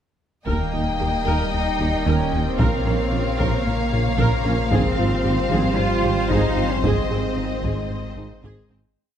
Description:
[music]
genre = cinematic, hybrid orchestral and electronic film score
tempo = 113 BPM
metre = 4/4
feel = straight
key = unclear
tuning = A4 = 439 Hz
[part]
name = warm symphonic violin section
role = melody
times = 0.5-8.7 s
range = Eb5 to G5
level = -29 LUFS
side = left 4 dB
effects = none
[part]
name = warm symphonic violin section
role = second line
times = 0.5-8.8 s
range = C5 to Eb5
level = -31 LUFS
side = left 6 dB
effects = none
[part]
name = warm symphonic viola section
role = accompaniment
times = 0.5-8.8 s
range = C4 to Bb4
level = -30 LUFS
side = right 2 dB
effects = none
[part]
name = bright trombone section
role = sustained chords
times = 0.5-8.7 s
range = Eb3 to Bb3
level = -31 LUFS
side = right 4 dB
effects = none
[part]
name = metallic inharmonic drone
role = sustained chords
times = 0.9-9.0 s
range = Db3 to C5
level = -30 LUFS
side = equal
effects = chorus, built-in reverb
[part]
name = harp-like synth pluck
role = arpeggios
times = 0.5-8.9 s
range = Eb3 to Bb4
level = -32 LUFS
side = right 3 dB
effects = none
[part]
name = rubbery square bass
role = riff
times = 0.5-8.9 s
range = Eb2 to Bb2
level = -27 LUFS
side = left 3 dB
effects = none
[part]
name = dark tuba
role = bass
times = 0.5-8.8 s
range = Ab1 to Eb2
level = -29 LUFS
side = right 4 dB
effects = none
[part]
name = warm sub bass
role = bass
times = 0.5-9.0 s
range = Eb1 to Bb1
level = -29 LUFS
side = equal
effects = none
[part]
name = warm symphonic cello section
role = bass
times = 0.5-8.4 s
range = Bb3 to F4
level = -27 LUFS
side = right 2 dB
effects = none
[part]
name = warm symphonic double bass section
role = bass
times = 0.5-8.8 s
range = Ab1 to Eb2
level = -29 LUFS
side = right 4 dB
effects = none
[part]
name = taiko ensemble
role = drums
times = 0.5-8.9 s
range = none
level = -27 LUFS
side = equal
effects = none
[sound]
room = moderate scoring stage reverb, RT60 2.1 s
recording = none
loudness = -18 LUFS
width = side -9 dB against mid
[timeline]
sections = 0.5-9.0 theme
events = fade-out 6.8-9.0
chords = 0.5 Eb; 2.6 Bbmadd9; 4.7 Fmadd9/Ab; 6.8 Ab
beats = | 0.47 1.00 1.53 2.06 | 2.60 3.13 3.66 4.19 | 4.72 5.25 5.78 6.31 | 6.84 7.37 7.91 8.44

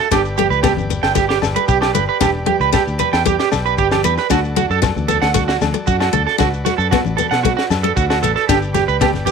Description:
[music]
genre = highlife guitar band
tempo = 115 BPM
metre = 4/4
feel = straight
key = unclear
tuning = A4 = 441 Hz
[part]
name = overdriven combo organ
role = sustained chords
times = 0.0-9.3 s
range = F#4 to D5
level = -28 LUFS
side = left 1 dB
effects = none
[part]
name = electric guitar at the edge of break-up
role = arpeggios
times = 0.0-9.3 s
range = F#4 to G5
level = -17 LUFS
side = right 12 dB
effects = slapback echo
[part]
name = picked steel-string acoustic guitar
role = accompaniment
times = 0.1-9.3 s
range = A3 to D4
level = -22 LUFS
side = left 16 dB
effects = none
[part]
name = fingered electric bass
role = bass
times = 0.1-9.3 s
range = E1 to B2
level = -21 LUFS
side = left 1 dB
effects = none
[part]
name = tight funk drum kit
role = drums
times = 0.1-9.2 s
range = kick drum, snare drum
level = -22 LUFS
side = left 2 dB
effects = none
[part]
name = agogo bells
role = percussion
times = 0.1-9.1 s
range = none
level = -27 LUFS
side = left 16 dB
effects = none
[part]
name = shekere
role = percussion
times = 0.1-9.3 s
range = none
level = -29 LUFS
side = left 9 dB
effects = none
[part]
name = congas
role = percussion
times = 0.4-9.3 s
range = none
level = -27 LUFS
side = left 10 dB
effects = none
[sound]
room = light reverb, small room ambience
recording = 1960s-style stereo with parts hard left and right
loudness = -14 LUFS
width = side -6 dB against mid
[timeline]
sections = 0.0-9.3 A section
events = none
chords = 0.1 G; 4.3 D; 8.5 G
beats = | 0.12 0.64 1.16 1.69 | 2.21 2.73 3.26 3.78 | 4.30 4.83 5.35 5.87 | 6.40 6.92 7.44 7.96 | 8.48 9.01

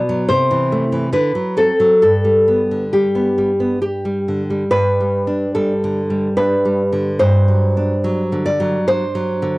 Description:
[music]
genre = romantic duo for nylon-string guitar and classical guitar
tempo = 66-74 BPM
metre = 3/4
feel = rubato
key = G major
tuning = A4 = 443 Hz
[part]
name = nylon-string guitar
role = melody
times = 0.0-3.8 s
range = G4 to D5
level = -15 LUFS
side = left 1 dB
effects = none
[part]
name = nylon-string guitar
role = accompaniment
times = 0.0-9.6 s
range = G2 to D5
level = -16 LUFS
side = equal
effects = cassette tape
[sound]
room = wet booth ambience, RT60 0.3 s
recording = home recording on cassette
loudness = -14 LUFS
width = side -21 dB against mid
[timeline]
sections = 0.0-4.7 A section; 4.7-9.6 B section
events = none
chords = 0.3 Am/C; 1.1 D7; 2.0 G; 7.2 D7/G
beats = 0.29 1.13 | 2.02 2.92 3.81 | 4.70 5.55 6.38 | 7.21 8.04 8.88

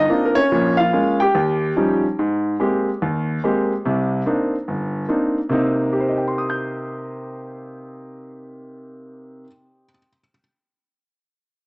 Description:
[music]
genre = solo jazz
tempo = 144 BPM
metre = 4/4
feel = swing 66% on 8ths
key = C minor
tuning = A4 = 440 Hz
[part]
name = clear concert grand piano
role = solo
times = 0.0-10.4 s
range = G1 to G6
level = -18 LUFS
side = equal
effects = cassette tape
[sound]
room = moderate spring reverb, RT60 1.4 s, small room ambience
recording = home recording on cassette, small speaker sound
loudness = -17 LUFS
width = side -33 dB against mid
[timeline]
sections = 0.0-2.2 A section; 2.2-5.5 B section; 5.5-8.8 C section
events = none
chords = 0.0 Cm11; 0.5 Bbm7; 1.3 Eb9; 2.2 Abmaj9; 3.8 Cm9; 5.5 Cm7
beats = 0.09 | 0.51 0.92 1.34 1.75 | 2.17 2.59 3.00 3.42 | 3.83 4.25 4.67 5.08 | 5.50 5.91 6.33 6.74 | 7.16 7.57 7.99 8.40

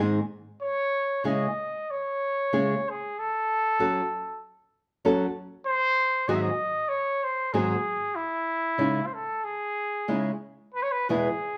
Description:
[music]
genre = mexican folk, mariachi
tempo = 95 BPM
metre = 4/4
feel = swing 55% on 8ths, rubato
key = C# harmonic minor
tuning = A4 = 439 Hz
[part]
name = nylon-string guitar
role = accompaniment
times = 0.0-11.3 s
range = E2 to A4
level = -27 LUFS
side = equal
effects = none
[part]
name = warm trumpet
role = melody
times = 0.6-11.6 s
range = E4 to E5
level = -29 LUFS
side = equal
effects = none
[sound]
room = moderate large studio reverb, RT60 0.9 s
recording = band playing live in one room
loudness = -27 LUFS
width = mono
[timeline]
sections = 0.0-10.7 A section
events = none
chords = 0.0 G#; 0.6 C#m; 3.2 F#m; 5.7 G#7; 8.2 C#madd9; 10.7 E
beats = | 0.61 1.25 1.89 2.53 | 3.16 3.79 4.42 5.04 | 5.66 6.28 6.91 7.54 | 8.16 8.79 9.44 10.09 | 10.75 11.39

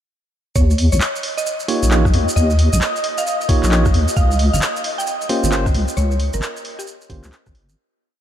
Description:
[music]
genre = UK garage, two-step garage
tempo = 133 BPM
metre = 4/4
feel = swing 63% on 16ths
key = Bb dorian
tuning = A4 = 441 Hz
[part]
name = mallet-like synth pluck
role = melody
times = 0.6-7.7 s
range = G4 to G5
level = -26 LUFS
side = right 1 dB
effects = chorus, analog delay
[part]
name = soft string machine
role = sustained chords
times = 0.6-7.8 s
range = Eb5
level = -27 LUFS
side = equal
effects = phaser, ensemble chorus, sidechain pumping
[part]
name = deep soft wobble bass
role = bass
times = 0.6-7.8 s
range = G1 to Eb2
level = -16 LUFS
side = equal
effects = chorus, tube saturation
[part]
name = electronic kick drum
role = drums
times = 0.6-7.5 s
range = none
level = -17 LUFS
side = equal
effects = none
[part]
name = maracas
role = percussion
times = 0.6-7.8 s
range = none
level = -29 LUFS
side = right 2 dB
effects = none
[part]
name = punchy analog drum machine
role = drums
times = 0.8-7.7 s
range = handclaps, hi-hat, rim click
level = -25 LUFS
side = equal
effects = none
[part]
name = bell-like tine electric piano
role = stabs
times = 1.7-7.3 s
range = Bb3 to Db5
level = -23 LUFS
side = right 1 dB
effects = medium stereo tremolo, ping-pong delay
[sound]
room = light reverb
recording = none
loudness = -15 LUFS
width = side -10 dB against mid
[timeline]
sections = 0.6-7.8 groove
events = fade-out 5.4-7.8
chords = 0.6 Eb7; 4.2 Bbm69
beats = | 0.56 1.01 1.46 1.91 | 2.36 2.81 3.26 3.72 | 4.17 4.62 5.07 5.52 | 5.97 6.42 6.87 7.33

